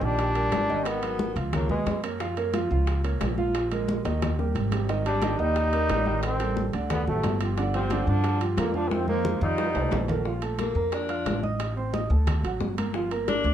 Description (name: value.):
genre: Afro-Cuban jazz.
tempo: 179 BPM.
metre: 4/4.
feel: straight.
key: Bb major from 10.3 s.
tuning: A4 = 439 Hz.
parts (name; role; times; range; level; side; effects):
bright trombone; melody; 0.0-2.0, 5.1-10.1 s; Ab3 to Eb4; -28 LUFS; equal; none.
clear tenor saxophone; second line; 0.0-2.0, 5.1-13.5 s; Cb3 to D4; -32 LUFS; left 4 dB; none.
warm concert grand piano; accompaniment; 0.0-13.5 s; D3 to F6; -30 LUFS; right 4 dB; none.
upright bass; bass; 0.0-13.5 s; G1 to G2; -28 LUFS; equal; none.
bongos; percussion; 0.2-13.4 s; none; -36 LUFS; left 4 dB; none.
congas; percussion; 0.2-13.5 s; none; -33 LUFS; left 2 dB; none.
timbales; percussion; 0.2-13.4 s; none; -37 LUFS; right 5 dB; none.
room: moderate studio ambience, RT60 0.5 s.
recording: dark, warm production.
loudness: -24 LUFS.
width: side -10 dB against mid.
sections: 0.0-10.3 A section; 10.3-13.5 B section.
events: drum fill 3.9-4.9, 8.9-10.3; tenor saxophone solo 10.3-13.5.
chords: 0.0 Ebmaj7; 0.9 Abm7; 1.5 Db7; 2.2 Gbmaj7; 3.5 Bb5; 4.2 Eb; 4.9 Absus2; 6.2 Am7b5; 6.9 D7; 7.6 G5; 8.9 Fm7; 9.6 F9; 10.3 Bbmaj7; 11.6 Adim; 12.3 D; 12.9 Gm7.